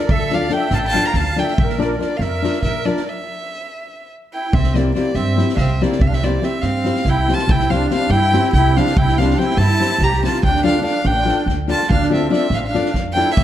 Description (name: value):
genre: balkan folk, Balkan wedding band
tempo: 285 BPM (eighths)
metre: 7/8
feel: straight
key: C mixolydian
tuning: A4 = 439 Hz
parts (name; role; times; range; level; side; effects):
- rich violin; melody; 0.0-13.4 s; D5 to Bb5; -21 LUFS; equal; none
- musette accordion; second line; 0.0-13.4 s; Bb3 to G5; -24 LUFS; right 5 dB; none
- nylon-string guitar; accompaniment; 0.0-13.3 s; C4 to D5; -21 LUFS; left 5 dB; none
- upright bass; bass; 0.1-13.4 s; A1 to G2; -20 LUFS; right 1 dB; none
- unplugged drum kit; percussion; 0.1-13.4 s; kick drum, snare drum; -22 LUFS; equal; none
room: light reverb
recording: dark, warm production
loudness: -15 LUFS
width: side -11 dB against mid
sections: 0.0-4.5 A section; 4.5-13.4 A section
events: stop 3.1-4.5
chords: 0.0 Dm; 1.6 Bb; 3.1 N.C.; 4.5 C; 10.4 Dm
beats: | 0.09 0.30 0.52 0.73 0.94 1.15 1.36 | 1.57 1.79 2.00 2.21 2.42 2.63 2.85 | 3.06 3.27 3.48 3.69 3.90 4.11 4.33 | 4.54 4.75 4.96 5.17 5.38 5.59 5.80 | 6.01 6.22 6.43 6.64 6.86 7.07 7.28 | 7.49 7.70 7.91 8.12 8.33 8.54 8.75 | 8.96 9.17 9.38 9.59 9.80 10.01 10.22 | 10.43 10.64 10.85 11.06 11.27 11.48 11.69 | 11.90 12.11 12.32 12.53 12.74 12.95 13.16 | 13.37